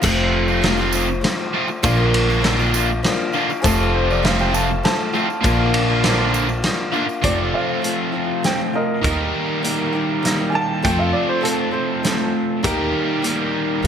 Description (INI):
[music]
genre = folk rock and heartland rock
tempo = 100 BPM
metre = 3/4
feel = straight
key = F mixolydian from 7.2 s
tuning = A4 = 440 Hz
[part]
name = picked old ladder-braced acoustic guitar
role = accompaniment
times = 0.0-13.9 s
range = F2 to A4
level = -23 LUFS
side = left 4 dB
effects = wide subtle chorus
[part]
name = crunchy overdriven guitar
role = riff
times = 0.0-13.9 s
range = F2 to Bb4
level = -21 LUFS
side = right 2 dB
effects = lush chorus
[part]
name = upright bass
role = bass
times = 0.0-13.9 s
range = F1 to G2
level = -22 LUFS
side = equal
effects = none
[part]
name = loose indie drum kit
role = drums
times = 0.0-13.9 s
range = crash cymbal, hi-hat, kick drum, ride cymbal, snare drum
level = -22 LUFS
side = equal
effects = gated reverb
[part]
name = tambourine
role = percussion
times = 0.0-7.2 s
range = none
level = -33 LUFS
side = right 12 dB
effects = none
[part]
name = warm upright piano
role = second line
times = 3.6-12.3 s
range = Ab4 to A5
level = -25 LUFS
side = right 3 dB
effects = none
[sound]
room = moderate plate reverb, RT60 1.6 s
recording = bright 1980s-style digital production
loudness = -16 LUFS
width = side -8 dB against mid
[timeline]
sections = 0.0-7.2 A section; 7.2-13.9 B section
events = upright piano solo 7.2-13.9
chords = 0.0 F; 1.8 Bb; 3.6 F; 5.4 Bb; 7.2 F; 9.0 Eb; 10.8 F; 12.6 Eb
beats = | 0.04 0.64 1.24 | 1.84 2.44 3.04 | 3.63 4.23 4.83 | 5.43 6.03 6.63 | 7.23 7.83 8.44 | 9.04 9.64 10.24 | 10.84 11.44 12.04 | 12.64 13.24 13.84